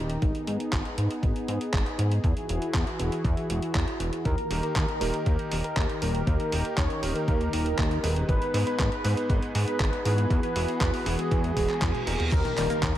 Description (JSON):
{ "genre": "italo disco", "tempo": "119 BPM", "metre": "4/4", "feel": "straight", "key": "G# harmonic minor", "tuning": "A4 = 440 Hz", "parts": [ { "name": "warm analog pad", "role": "sustained chords", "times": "0.0-13.0 s", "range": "D#3 to A#4", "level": "-32 LUFS", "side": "left 1 dB", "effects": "chorus" }, { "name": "chorused synth bass", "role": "bass", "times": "0.0-12.9 s", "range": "D#1 to G#2", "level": "-28 LUFS", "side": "equal", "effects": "none" }, { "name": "detuned 8-bit digital drum machine", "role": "drums", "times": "0.1-13.0 s", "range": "cabasa, crash cymbal, handclaps, hi-hat, toms", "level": "-34 LUFS", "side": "equal", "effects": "gated reverb" }, { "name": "electronic kick drum", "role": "drums", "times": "0.2-12.9 s", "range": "none", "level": "-27 LUFS", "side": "equal", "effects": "none" }, { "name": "wide unison lead", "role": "melody", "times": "4.3-13.0 s", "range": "G#4 to C#5", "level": "-31 LUFS", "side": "right 1 dB", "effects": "ping-pong delay" }, { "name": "bright electric grand piano", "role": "stabs", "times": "4.5-12.9 s", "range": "G#2 to B4", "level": "-34 LUFS", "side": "right 2 dB", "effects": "none" }, { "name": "reverse cymbal and impact", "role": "sound effects", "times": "11.6-13.0 s", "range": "none", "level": "-36 LUFS", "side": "right 1 dB", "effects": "none" }, { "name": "analog pluck", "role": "arpeggios", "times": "12.3-13.0 s", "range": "D#3 to A#3", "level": "-35 LUFS", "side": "left 4 dB", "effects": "chorus" } ], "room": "light reverb", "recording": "none", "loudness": "-24 LUFS", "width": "side -12 dB against mid", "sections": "0.0-12.3 A section", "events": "reverse cymbal 11.6-12.3; drum fill 11.8-12.3; impact 12.3-13.0", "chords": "0.2 G#m; 2.2 Eadd9; 4.3 D#; 8.3 G#m; 10.3 Eadd9; 12.3 D#" }